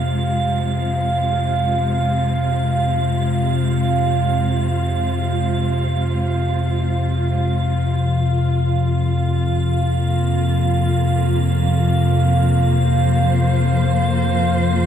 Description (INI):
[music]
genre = dark ambient drone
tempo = free time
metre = none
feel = none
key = F minor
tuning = A4 = 440 Hz
[part]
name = warm symphonic cello section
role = sustained chords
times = 0.0-14.9 s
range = F2 to C5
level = -24 LUFS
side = right 1 dB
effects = none
[part]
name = deep rumbling drone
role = drone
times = 0.0-14.9 s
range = F2 to C3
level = -18 LUFS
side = left 1 dB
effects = built-in reverb
[part]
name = icy glass pad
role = texture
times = 0.0-14.9 s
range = F5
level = -24 LUFS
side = right 3 dB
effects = chorus, built-in reverb
[sound]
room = wet huge ambient reverb, RT60 8.2 s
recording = none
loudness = -16 LUFS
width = side -9 dB against mid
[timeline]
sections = 0.0-14.9 A section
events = fade-in on cello section 0.0-14.9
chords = 0.0 Fm; 8.0 Bbsus2/F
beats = free time